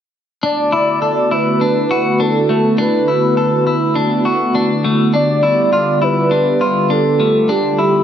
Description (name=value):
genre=dream pop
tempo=102 BPM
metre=4/4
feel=straight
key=D major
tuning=A4 = 441 Hz
part: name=hollow soft pad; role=sustained chords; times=0.6-8.0 s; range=D3 to G4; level=-17 LUFS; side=right 1 dB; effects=chorus
part: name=clean electric guitar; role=arpeggios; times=0.4-8.0 s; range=A3 to A4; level=-17 LUFS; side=left 2 dB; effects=wide subtle chorus, analog delay
part: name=warm velvety synth lead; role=melody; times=0.5-8.0 s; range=G4 to D5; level=-17 LUFS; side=right 1 dB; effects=chorus, analog delay
room=wet echo chamber reverb, RT60 1.5 s, digital ambience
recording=echo-heavy mix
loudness=-12 LUFS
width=side -9 dB against mid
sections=0.4-8.0 A section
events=none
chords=0.4 D69; 5.1 G7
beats=| 0.43 1.02 1.61 2.20 | 2.78 3.37 3.96 4.55 | 5.14 5.72 6.31 6.90 | 7.49